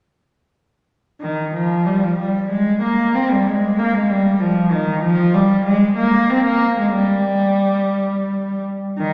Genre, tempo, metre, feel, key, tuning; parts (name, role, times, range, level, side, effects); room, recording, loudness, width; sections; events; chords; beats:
classical, baroque-style suite movement for unaccompanied cello; 87-97 BPM; 3/4; rubato; A4 = 440 Hz
warm cello; solo; 1.2-9.1 s; Eb3 to C4; -18 LUFS; equal
wet concert hall reverb, RT60 2.0 s; -18 LUFS; mono
1.2-9.1 A section
| 1.22 1.87 2.51 | 3.15 3.79 4.41 | 5.03 5.65 6.29 | 6.95 7.63 8.32 | 8.98